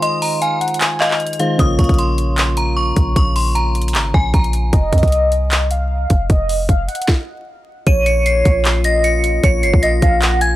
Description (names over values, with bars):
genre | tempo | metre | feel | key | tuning
hip hop, trap | 153 BPM | 4/4 | half-time | unclear | A4 = 440 Hz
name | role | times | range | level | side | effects
metallic FM bell | melody | 0.0-4.7, 7.9-10.6 s | Eb5 to Eb7 | -20 LUFS | equal | chorus
warm velvety synth lead | second line | 0.0-1.2, 4.7-10.6 s | Db5 to Ab5 | -20 LUFS | equal | chorus, tape echo
soft electric-piano-like synth keys | accompaniment | 0.0-4.7 s | Db3 to Db5 | -23 LUFS | equal | chorus
trap drum kit | drums | 0.0-10.5 s | handclaps, hi-hat, kick drum, snare drum | -16 LUFS | equal | none
warm 808-style bass | bass | 1.6-10.6 s | F1 to F2 | -18 LUFS | equal | none
mellow French horn section | sustained chords | 7.9-10.6 s | Bb3 to F4 | -24 LUFS | left 5 dB | stereo widening
room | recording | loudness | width
little or no reverb | dry, gritty hardware recording, transformer saturation, vinyl crackle | -13 LUFS | side -15 dB against mid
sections
0.0-7.9 A section; 7.9-10.6 B section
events
break 0.0-1.6; stop 7.1-7.9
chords
0.0 Fm7; 1.6 Bbm; 4.7 F5; 7.9 Bbm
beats
| 0.02 0.42 0.81 1.20 | 1.59 1.99 2.38 2.77 | 3.16 3.55 3.95 4.34 | 4.73 5.12 5.51 5.91 | 6.30 6.69 7.08 7.47 | 7.87 8.26 8.65 9.04 | 9.44 9.83 10.22